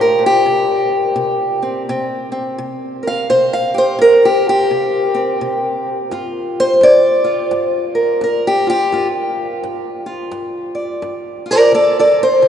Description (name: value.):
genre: acoustic country blues, solo or duo.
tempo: 85 BPM.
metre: 4/4.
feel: swing 61% on 8ths.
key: G minor.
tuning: A4 = 441 Hz.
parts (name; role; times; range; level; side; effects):
fingerpicked steel-string acoustic guitar; solo; 0.0-12.5 s; G2 to F5; -13 LUFS; equal; none.
room: wet cathedral reverb, RT60 6.5 s.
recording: recorded in a church or concert hall, nothing above 10.9 kHz.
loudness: -13 LUFS.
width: side -9 dB against mid.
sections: 0.0-12.5 A section.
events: steel-string acoustic guitar solo 0.0-12.5.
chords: 0.5 C5; 6.1 Gm7; 11.7 D5.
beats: | 0.48 1.18 1.88 2.59 | 3.29 3.99 4.70 5.40 | 6.10 6.81 7.51 8.21 | 8.91 9.62 10.32 11.02 | 11.72 12.42.